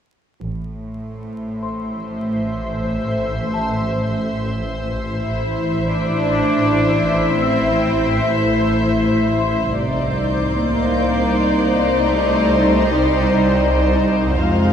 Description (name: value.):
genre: cinematic.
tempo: 78 BPM.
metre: 3/4.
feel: straight.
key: unclear.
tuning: A4 = 441 Hz.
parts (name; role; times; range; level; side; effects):
shimmering ambient pad; sustained chords; 1.4-14.7 s; Eb4 to C6; -25 LUFS; right 1 dB; chorus, built-in reverb.
rich symphonic cello section; bass; 0.4-14.7 s; A2 to D4; -22 LUFS; right 1 dB; none.
rich symphonic double bass section; bass; 0.4-1.2, 5.1-14.7 s; A1 to F2; -24 LUFS; right 2 dB; none.
swarming drone; drone; 1.5-14.7 s; A1 to F2; -24 LUFS; equal; built-in reverb.
worn celesta; texture; 1.6-14.4 s; C5 to E6; -32 LUFS; left 3 dB; none.
warm symphonic violin section; melody; 5.1-14.7 s; D5 to F5; -25 LUFS; left 6 dB; none.
dark studio violin section; second line; 5.1-14.7 s; Eb4 to C5; -20 LUFS; left 2 dB; none.
warm symphonic violin section; texture; 9.8-14.0 s; C6 to G6; -32 LUFS; left 5 dB; none.
room: wet recital hall reverb, RT60 1.5 s.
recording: vinyl crackle.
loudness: -16 LUFS.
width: side -8 dB against mid.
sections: 0.5-5.1 A section; 5.1-14.7 B section.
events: none.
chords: 0.5 Am; 9.8 Cmadd9.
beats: | 0.45 1.23 2.00 | 2.77 3.54 4.32 | 5.11 5.89 6.67 | 7.45 8.23 9.00 | 9.78 10.55 11.32 | 12.09 12.86 13.63 | 14.39.